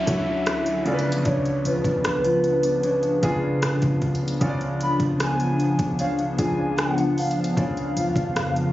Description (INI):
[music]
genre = contemporary R&B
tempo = 76 BPM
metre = 4/4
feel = straight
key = unclear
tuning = A4 = 439 Hz
[part]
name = hollow clarinet-like synth lead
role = melody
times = 0.0-8.7 s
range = B4 to B5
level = -26 LUFS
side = equal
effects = chorus, tape echo
[part]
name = warm concert grand piano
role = accompaniment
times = 0.0-8.7 s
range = C#3 to D5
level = -27 LUFS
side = equal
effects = none
[part]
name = hollow soft pad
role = sustained chords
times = 0.0-8.7 s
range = C#3 to E4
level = -27 LUFS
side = left 1 dB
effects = ensemble chorus
[part]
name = nylon-string guitar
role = arpeggios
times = 0.0-8.7 s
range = C#3 to E4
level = -28 LUFS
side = left 1 dB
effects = none
[part]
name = clean 808-style bass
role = bass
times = 0.0-8.7 s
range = B1 to C#3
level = -35 LUFS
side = equal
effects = none
[part]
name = downlifter and swell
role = sound effects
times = 0.0-8.7 s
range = none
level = -40 LUFS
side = equal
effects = none
[part]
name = smooth R&B drum kit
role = drums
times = 0.1-8.7 s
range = hi-hat, kick drum, rim click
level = -28 LUFS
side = equal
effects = none
[sound]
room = light reverb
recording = recorded on a phone in the room, studio reverb, nothing above 7.6 kHz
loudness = -20 LUFS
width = side -15 dB against mid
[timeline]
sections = 0.0-8.7 A section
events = none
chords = 0.0 Dmaj9; 0.9 C#7b9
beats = 0.47 | 1.25 2.04 2.83 3.62 | 4.41 5.20 5.99 6.78 | 7.57 8.36